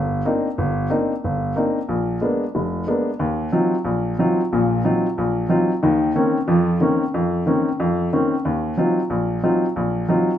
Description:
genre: jazz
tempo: 183 BPM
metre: 4/4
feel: swing 62% on 8ths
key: Eb dorian from 3.2 s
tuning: A4 = 439 Hz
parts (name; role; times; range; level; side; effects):
- warm baby grand piano; solo; 0.0-10.3 s; F1 to F4; -18 LUFS; equal; none
room: wet large studio reverb, RT60 0.9 s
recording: band playing live in one room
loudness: -18 LUFS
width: side -10 dB against mid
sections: 0.0-3.2 A section; 3.2-10.4 B section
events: none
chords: 0.0 Cm9; 1.9 Bb7b9; 3.2 Ebm69; 5.8 Bbmadd9/Eb; 8.4 Ebm69

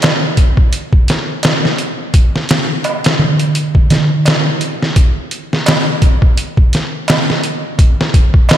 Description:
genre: trip hop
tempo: 85 BPM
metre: 4/4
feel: swing 56% on 16ths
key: none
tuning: none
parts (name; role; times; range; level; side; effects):
- trip hop sampler-style drum kit; drums; 0.0-8.6 s; hi-hat, kick drum, snare drum; -11 LUFS; equal; studio reverb
- darbuka; percussion; 0.0-8.6 s; none; -17 LUFS; right 2 dB; none
room: moderate lush hall reverb, RT60 2.2 s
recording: dreamy mix soaked in reverb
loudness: -11 LUFS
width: side -11 dB against mid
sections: 0.0-8.6 A section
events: none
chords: none

